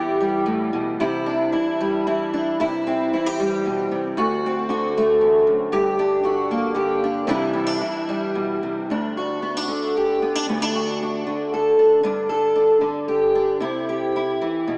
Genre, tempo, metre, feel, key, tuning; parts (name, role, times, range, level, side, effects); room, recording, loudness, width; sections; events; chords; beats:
folk, solo fingerstyle acoustic guitar; 114 BPM; 3/4; rubato; A4 = 440 Hz
fingerpicked steel-string acoustic guitar; solo; 0.0-14.8 s; D2 to A4; -22 LUFS; equal; analog chorus, diffuse ambient delay
wet plate reverb, RT60 2.9 s; dreamy mix soaked in reverb, small speaker sound; -21 LUFS; mono
0.0-8.9 A section; 8.9-14.8 B section
0.0 Em; 1.0 Cadd9; 2.6 C; 4.2 D7; 5.7 Gm; 7.3 Cadd9; 8.9 D; 10.5 Bm/D (rootless); 12.0 G5; 13.6 C
0.46 | 0.99 1.52 2.05 | 2.59 3.13 3.65 | 4.18 4.70 5.21 | 5.72 6.24 6.76 | 7.28 7.81 8.35 | 8.89 9.42 9.95 | 10.47 11.00 11.51 | 12.03 12.54 13.07 | 13.59 14.12 14.66